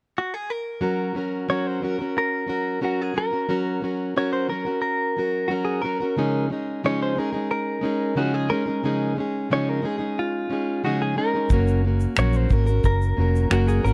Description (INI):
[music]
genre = acoustic pop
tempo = 90 BPM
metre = 4/4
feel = straight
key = unclear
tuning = A4 = 440 Hz
[part]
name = direct-recorded clean electric guitar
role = melody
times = 0.2-13.9 s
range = F4 to Db5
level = -29 LUFS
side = equal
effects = subtle chorus
[part]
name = fingerpicked plugged-in steel-string acoustic guitar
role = accompaniment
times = 0.8-13.9 s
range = Db3 to Bb4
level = -27 LUFS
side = equal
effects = none
[part]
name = vintage muted fingered electric bass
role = bass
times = 11.5-13.9 s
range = F1 to Bb1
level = -23 LUFS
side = equal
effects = none
[part]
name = cloth-damped thuddy drum kit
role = drums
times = 11.5-13.9 s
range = finger snaps, kick drum, shaker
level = -23 LUFS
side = equal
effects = none
[sound]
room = little or no reverb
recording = close, detailed microphones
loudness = -24 LUFS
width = mono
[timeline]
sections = 0.8-13.9 A section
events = none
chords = 0.0 N.C.; 0.8 Gb; 6.2 Dbadd9; 11.5 Gb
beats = 0.15 | 0.81 1.48 2.15 2.82 | 3.49 4.15 4.82 5.49 | 6.16 6.83 7.49 8.16 | 8.83 9.50 10.17 10.84 | 11.50 12.17 12.84 13.51